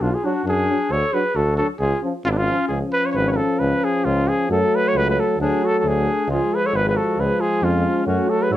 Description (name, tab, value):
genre	balkan folk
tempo	134 BPM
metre	2/4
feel	swing 54% on 16ths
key	C# phrygian dominant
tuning	A4 = 439 Hz
part	mellow trumpet	melody	0.0-8.6 s	D4 to C#5	-21 LUFS	equal	none
part	warm clarinet	second line	0.0-2.7, 5.4-8.6 s	B3 to A4	-26 LUFS	left 3 dB	none
part	clear tuba	bass	0.0-8.6 s	G#1 to G#2	-23 LUFS	equal	none
part	clear euphonium	accompaniment	0.2-8.6 s	E#3 to F#3	-26 LUFS	right 5 dB	none
part	mellow euphonium	accompaniment	0.2-8.6 s	G#3 to D4	-25 LUFS	left 4 dB	none
room	moderate studio reverb, RT60 0.5 s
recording	dark, warm production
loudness	-17 LUFS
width	side -13 dB against mid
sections	0.0-2.7 A section; 2.7-8.6 B section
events	none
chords	0.0 Bm; 0.9 D; 1.8 C#; 4.5 F#m; 5.4 D; 6.3 C#; 8.1 F#m